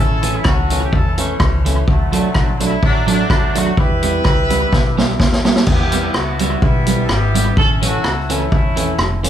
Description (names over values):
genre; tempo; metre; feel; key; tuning
ska; 126 BPM; 4/4; swing 54% on 8ths; E dorian; A4 = 439 Hz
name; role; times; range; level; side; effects
warm horn section; melody; 0.0-9.3 s; D3 to B4; -21 LUFS; equal; none
upright bass; bass; 0.0-9.3 s; F1 to E2; -21 LUFS; left 1 dB; none
electric guitar at the edge of break-up; accompaniment; 0.2-9.3 s; E3 to E4; -21 LUFS; right 3 dB; none
street-band drum kit; drums; 0.2-9.3 s; crash cymbal, hi-hat, kick drum, rim click, snare drum; -16 LUFS; equal; tape echo
room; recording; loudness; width
light reverb; band playing live in one room; -13 LUFS; side -10 dB against mid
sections
0.0-5.7 A section; 5.7-9.3 B section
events
drum fill 4.7-5.7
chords
0.0 A; 1.9 D; 3.8 Em; 7.6 A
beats
0.45 0.92 1.40 | 1.87 2.35 2.83 3.30 | 3.77 4.25 4.72 5.20 | 5.67 6.15 6.62 7.10 | 7.57 8.04 8.52 8.99